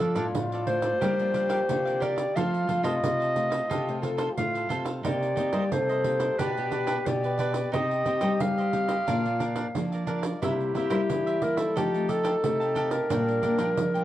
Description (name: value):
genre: samba and choro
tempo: 89 BPM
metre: 4/4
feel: straight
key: unclear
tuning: A4 = 440 Hz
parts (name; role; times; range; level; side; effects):
- mellow clarinet; melody; 0.0-14.0 s; G4 to F5; -28 LUFS; equal; none
- growling trombone; second line; 0.0-14.0 s; D4 to A4; -32 LUFS; left 2 dB; none
- cavaquinho; accompaniment; 0.0-14.0 s; D4 to A5; -35 LUFS; right 2 dB; none
- nylon-string guitar; accompaniment; 0.0-14.0 s; F2 to G4; -36 LUFS; left 2 dB; none
- nylon-string guitar; bass; 0.0-14.0 s; A2 to C4; -31 LUFS; left 1 dB; none
- pandeiro; percussion; 0.0-14.0 s; none; -34 LUFS; right 4 dB; none
room: light reverb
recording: worn, warbling old tape, cassette tape, warbly pitch drift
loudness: -24 LUFS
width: side -13 dB against mid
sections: 0.0-14.0 A section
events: none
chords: 0.0 Dm/F; 1.0 Gm7; 2.4 F; 5.0 Cm7; 6.4 G/B; 7.7 Cm; 9.1 Bb; 10.4 C7; 11.8 Fadd9; 13.1 Bb6